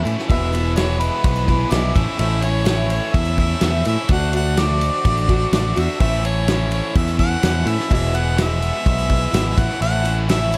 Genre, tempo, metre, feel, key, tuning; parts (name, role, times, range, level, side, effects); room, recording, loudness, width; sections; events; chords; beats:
folk rock and heartland rock; 126 BPM; 4/4; straight; A4 = 442 Hz
picked acoustic archtop guitar; accompaniment; 0.0-10.6 s; E2 to F#4; -28 LUFS; equal
biting overdriven guitar; riff; 0.0-10.6 s; E2 to F#4; -30 LUFS; equal
picked electric bass; bass; 0.1-10.6 s; E1 to A2; -23 LUFS; equal
natural country drum kit; drums; 0.1-10.6 s; kick drum, ride cymbal, snare drum; -24 LUFS; equal
tambourine; percussion; 0.1-10.6 s; -46 LUFS; equal
clear harmonica; melody; 0.3-10.6 s; B4 to F#5; -27 LUFS; equal
small room ambience; -19 LUFS; mono
0.0-10.6 A section
0.3 E; 2.0 A; 4.1 D; 6.0 A; 7.9 E; 9.6 A
| 0.29 0.77 1.24 1.72 | 2.19 2.67 3.14 3.62 | 4.09 4.57 5.05 5.52 | 6.00 6.47 6.95 7.43 | 7.91 8.38 8.86 9.34 | 9.81 10.29